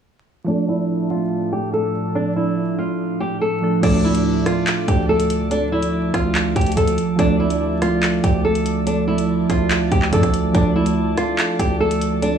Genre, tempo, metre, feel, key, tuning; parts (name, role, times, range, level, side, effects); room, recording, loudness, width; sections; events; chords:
hip hop, drill; 143 BPM; 4/4; half-time; D minor; A4 = 438 Hz
soft electric-piano-like synth keys; accompaniment; 0.4-12.4 s; F3 to D5; -23 LUFS; right 3 dB; chorus, low-pass filter
flamenco guitar; melody; 0.5-12.4 s; D4 to A4; -22 LUFS; equal; low-pass filter, digital delay
glassy FM pad; sustained chords; 0.9-12.4 s; A2 to A5; -24 LUFS; right 3 dB; ensemble chorus, built-in reverb, low-pass filter
distorted 808-style bass; bass; 3.8-12.4 s; D2 to F2; -22 LUFS; equal; distortion
drill drum kit; drums; 3.8-12.3 s; crash cymbal, handclaps, hi-hat, kick drum, rim click; -22 LUFS; equal
little or no reverb; vinyl crackle, small room ambience; -16 LUFS; side -8 dB against mid
0.5-3.8 A section; 3.8-12.4 B section
filter sweep 0.5-3.8
0.5 Dm